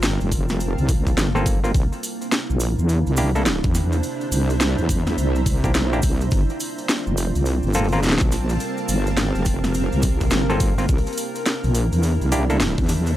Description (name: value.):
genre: glitch hop.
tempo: 105 BPM.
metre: 4/4.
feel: swing 63% on 16ths.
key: unclear.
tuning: A4 = 439 Hz.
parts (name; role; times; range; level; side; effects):
warbly tape-like pad; sustained chords; 0.0-13.2 s; C3 to G4; -31 LUFS; right 4 dB; chorus, built-in reverb, phaser, sidechain pumping.
wobble bass; bass; 0.0-13.2 s; F1 to E2; -21 LUFS; equal; chorus, tube saturation.
drum and bass drum kit; drums; 0.0-13.2 s; hi-hat, snare drum; -25 LUFS; equal; overdrive.
cabasa; percussion; 0.0-13.2 s; none; -33 LUFS; right 3 dB; none.
granular cloud pad; texture; 0.0-13.2 s; C4 to Bb5; -29 LUFS; right 1 dB; built-in reverb, sidechain pumping.
electronic kick drum; drums; 0.3-12.9 s; none; -21 LUFS; equal; overdrive.
mellow clav; stabs; 1.4-12.6 s; Bb3 to Bb4; -26 LUFS; left 1 dB; sidechain pumping, tape echo.
room: little or no reverb.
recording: dry, gritty hardware recording.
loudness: -18 LUFS.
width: side -13 dB against mid.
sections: 0.0-13.2 A section.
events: none.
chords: 0.0 Gm11; 1.7 C9; 6.3 Gm11; 10.9 C9.